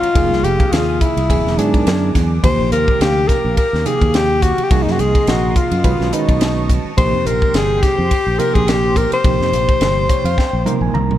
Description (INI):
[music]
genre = electric jazz fusion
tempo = 106 BPM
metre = 4/4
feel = swing 56% on 16ths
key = unclear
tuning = A4 = 440 Hz
[part]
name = breathy alto saxophone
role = melody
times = 0.0-10.9 s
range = D4 to C5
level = -18 LUFS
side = left 3 dB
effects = none
[part]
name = overdriven reed electric piano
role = accompaniment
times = 0.0-11.2 s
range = C3 to Bb5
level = -21 LUFS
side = right 6 dB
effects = fast tremolo
[part]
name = phased analog pad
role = sustained chords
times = 0.0-11.2 s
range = G4 to Eb6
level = -29 LUFS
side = right 2 dB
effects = phaser, chorus
[part]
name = fingered electric bass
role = bass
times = 0.0-11.2 s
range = E1 to G#2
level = -20 LUFS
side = equal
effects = none
[part]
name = crisp fusion drum kit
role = drums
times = 0.0-11.2 s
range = hi-hat, kick drum, ride cymbal, snare drum, toms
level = -18 LUFS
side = equal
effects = none
[sound]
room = light reverb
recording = dark, warm production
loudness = -13 LUFS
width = side -12 dB against mid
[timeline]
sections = 0.0-11.2 A section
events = reed electric piano fill 9.8-11.2; drum fill 10.4-11.2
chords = 0.2 Fm7; 1.3 E7#11; 2.4 Ebmaj9; 4.7 Cm7b5; 5.8 B9; 7.0 Bbsus2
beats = | 0.15 0.72 1.29 1.86 | 2.43 3.00 3.57 4.14 | 4.71 5.27 5.84 6.41 | 6.98 7.54 8.11 8.68 | 9.24 9.81 10.38 10.94